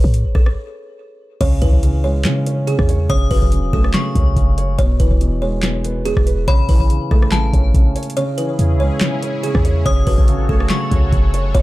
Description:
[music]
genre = hip hop, trap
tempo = 142 BPM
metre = 4/4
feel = half-time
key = C# minor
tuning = A4 = 438 Hz
[part]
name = buzzing kalimba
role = melody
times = 0.0-11.6 s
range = G#4 to C#5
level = -25 LUFS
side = right 1 dB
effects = ping-pong delay
[part]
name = clean 808-style bass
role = bass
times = 0.0-11.6 s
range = E1 to C#3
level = -17 LUFS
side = equal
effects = none
[part]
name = booming analog drum machine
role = drums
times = 0.0-11.6 s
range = crash cymbal, handclaps, hi-hat, kick drum, rim click, snare drum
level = -16 LUFS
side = equal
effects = overdrive
[part]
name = dark baby grand piano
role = accompaniment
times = 1.4-11.6 s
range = B2 to C#5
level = -22 LUFS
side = right 1 dB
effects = none
[part]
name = metallic FM bell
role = second line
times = 3.1-11.5 s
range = A5 to D#6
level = -26 LUFS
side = left 6 dB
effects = chorus, ping-pong delay
[part]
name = sweeping resonant pad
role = sustained chords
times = 8.2-11.6 s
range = C#3 to C#5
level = -27 LUFS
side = left 1 dB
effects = chorus
[sound]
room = little or no reverb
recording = dark, warm production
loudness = -14 LUFS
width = side -18 dB against mid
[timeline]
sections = 0.0-1.4 A section; 1.4-11.6 B section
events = break 0.6-1.4, 8.2-8.6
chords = 0.0 Asus2; 1.4 C#m; 3.1 F#m; 4.8 E; 6.5 A; 8.2 C#m; 9.9 F#m

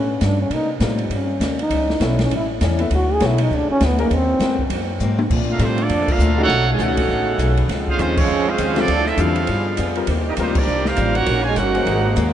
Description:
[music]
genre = jazz, big band swing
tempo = 201 BPM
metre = 4/4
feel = swing 60% on 8ths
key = unclear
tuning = A4 = 441 Hz
[part]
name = mellow trombone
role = melody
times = 0.0-4.7 s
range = Bb3 to Ab4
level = -22 LUFS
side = equal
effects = none
[part]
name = warm baby grand piano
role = accompaniment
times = 0.0-12.1 s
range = D3 to E5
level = -28 LUFS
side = left 5 dB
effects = none
[part]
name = upright bass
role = bass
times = 0.0-12.3 s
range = G1 to C3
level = -21 LUFS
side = equal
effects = none
[part]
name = open jazz drum kit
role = drums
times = 0.2-12.2 s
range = crash cymbal, hi-hat, kick drum, ride cymbal, snare drum, toms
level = -25 LUFS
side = equal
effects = none
[part]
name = picked old ladder-braced acoustic guitar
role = accompaniment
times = 0.5-12.3 s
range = Ab2 to Ab4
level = -28 LUFS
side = left 5 dB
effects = none
[part]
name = clear saxophone section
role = sustained chords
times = 5.3-12.3 s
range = Bb2 to G4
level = -29 LUFS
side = left 2 dB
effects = none
[part]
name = brilliant trumpet section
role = melody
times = 5.5-12.3 s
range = Ab3 to Ab5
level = -22 LUFS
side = right 3 dB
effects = none
[part]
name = warm trombone section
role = second line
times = 5.5-12.3 s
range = Eb3 to Gb4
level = -23 LUFS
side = right 4 dB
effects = none
[sound]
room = moderate cathedral reverb, RT60 6.0 s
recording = in a vast, echoing space, nothing above 10.6 kHz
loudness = -16 LUFS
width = side -10 dB against mid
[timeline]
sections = 0.0-5.3 A section; 5.3-12.3 B section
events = trombone solo 0.0-5.3; drum fill 5.0; band accent 6.0, 8.1, 10.5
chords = 0.0 G5; 0.5 Cm7; 1.7 A7; 2.9 Dmaj7; 4.1 Ab9; 5.3 Bbmaj7; 6.5 B9; 7.7 Dbmaj7; 8.9 Dm9; 9.5 G7b9; 10.1 Cm7; 11.3 Ebm7

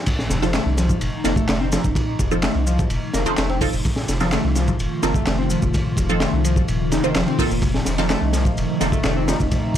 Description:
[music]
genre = breakbeat, breaks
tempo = 127 BPM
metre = 4/4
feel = straight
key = unclear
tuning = A4 = 439 Hz
[part]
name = phased analog pad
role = sustained chords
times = 0.1-9.8 s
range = C3 to F4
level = -26 LUFS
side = equal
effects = phaser, chorus, sidechain pumping
[part]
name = crunchy breakbeat drum kit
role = drums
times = 0.1-9.8 s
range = crash cymbal, hi-hat, kick drum, ride cymbal, snare drum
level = -22 LUFS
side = equal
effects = none
[part]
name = punchy analog drum machine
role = drums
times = 0.1-9.8 s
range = handclaps, ride cymbal, shaker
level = -30 LUFS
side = equal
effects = none
[part]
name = impact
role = sound effects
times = 0.1-2.0 s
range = none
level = -32 LUFS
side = equal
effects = none
[part]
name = saturated sub bass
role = bass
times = 0.3-9.8 s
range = Eb1 to C2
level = -24 LUFS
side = equal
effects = none
[part]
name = overdriven synth lead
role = riff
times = 0.4-9.3 s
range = Eb3 to Eb4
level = -26 LUFS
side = left 1 dB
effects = distortion, analog chorus, ping-pong delay
[part]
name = filtered dub chord stab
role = stabs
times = 0.4-8.9 s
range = C4 to C5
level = -26 LUFS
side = right 3 dB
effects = phaser, ping-pong delay
[sound]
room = light reverb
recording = dark, warm production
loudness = -18 LUFS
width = side -10 dB against mid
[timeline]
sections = 0.1-9.8 A section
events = drop 0.1-9.8; impact 0.1-2.0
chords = 0.1 F7

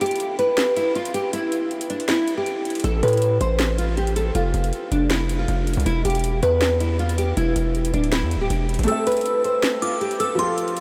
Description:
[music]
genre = hip hop, trap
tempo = 159 BPM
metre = 4/4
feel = half-time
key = unclear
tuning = A4 = 441 Hz
[part]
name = nylon-string guitar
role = melody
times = 0.0-10.8 s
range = D4 to C5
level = -24 LUFS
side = equal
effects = analog chorus, tape echo
[part]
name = trap drum kit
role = drums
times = 0.0-10.8 s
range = finger snaps, hi-hat, snare drum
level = -31 LUFS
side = equal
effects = none
[part]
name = distorted 808-style bass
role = bass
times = 2.8-8.9 s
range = D1 to A2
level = -24 LUFS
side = equal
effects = distortion
[part]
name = felt-muted upright piano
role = accompaniment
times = 8.8-10.8 s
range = F3 to E5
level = -30 LUFS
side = equal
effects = none
[part]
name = glassy synth bell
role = second line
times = 8.9-10.8 s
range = C6 to E6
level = -28 LUFS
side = equal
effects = chorus, phaser, tape echo
[sound]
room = moderate huge ambient reverb, RT60 8.1 s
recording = dreamy mix soaked in reverb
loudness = -22 LUFS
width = mono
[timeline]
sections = 0.0-10.8 A section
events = break 0.0-2.8; kick muted 8.9-10.8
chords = 0.0 N.C.; 2.8 Am; 4.4 F5; 5.9 Em; 8.9 Am

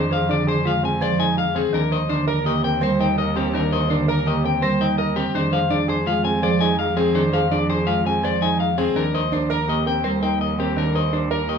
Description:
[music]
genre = classical, minimalist pattern music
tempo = 166 BPM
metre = 5/4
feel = straight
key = F dorian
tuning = A4 = 442 Hz
[part]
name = electric guitar at the edge of break-up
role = melody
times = 0.0-11.6 s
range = G4 to Ab5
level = -23 LUFS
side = left 8 dB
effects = none
[part]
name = mellow French horn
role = second line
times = 0.0-11.6 s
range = Ab4 to Bb4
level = -30 LUFS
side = right 3 dB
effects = none
[part]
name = marimba with medium mallets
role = accompaniment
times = 0.0-11.6 s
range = D3 to Bb3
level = -23 LUFS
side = right 2 dB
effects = none
[part]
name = clear concert grand piano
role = arpeggios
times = 0.0-11.6 s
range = C4 to C5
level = -26 LUFS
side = right 6 dB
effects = none
[part]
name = rich cello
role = bass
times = 0.0-11.6 s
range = Eb2 to F2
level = -27 LUFS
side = right 3 dB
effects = none
[sound]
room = light reverb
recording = close, detailed microphones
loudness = -18 LUFS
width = side -6 dB against mid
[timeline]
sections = 0.0-11.6 A section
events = none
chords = 0.0 Fm7; 1.7 Cm7/Eb; 5.3 Fm7; 9.0 Cm7/Eb

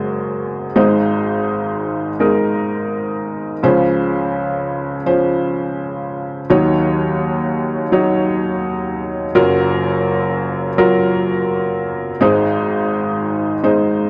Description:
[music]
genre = folk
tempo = 42 BPM (dotted quarters)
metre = 6/8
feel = straight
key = Db major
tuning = A4 = 441 Hz
[part]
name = felt-muted upright piano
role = solo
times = 0.0-14.1 s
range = Gb1 to Db5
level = -18 LUFS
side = equal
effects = none
[sound]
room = small room ambience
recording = dry, close 1970s-style studio recording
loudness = -18 LUFS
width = mono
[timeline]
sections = 0.0-3.6 A section; 3.6-14.1 B section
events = none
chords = 0.0 Gbadd9; 0.8 Ab; 3.6 Dbmaj7; 6.5 Ebm7; 9.3 Gbmaj7; 12.2 Ab

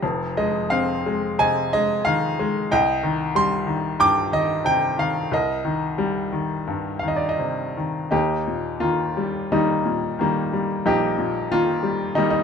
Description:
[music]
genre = classical, lyrical solo piano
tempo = 80-96 BPM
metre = 4/4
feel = rubato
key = C minor, Eb major from 8.1 s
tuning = A4 = 442 Hz
[part]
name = bright upright piano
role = solo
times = 0.0-12.4 s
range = F1 to D6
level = -20 LUFS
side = left 1 dB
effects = none
[sound]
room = light reverb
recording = dark, warm production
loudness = -20 LUFS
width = side -6 dB against mid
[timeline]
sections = 0.0-8.1 A section; 8.1-12.4 B section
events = none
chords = 0.0 Fm7; 2.7 Cm; 5.3 Cm7; 8.1 Eb

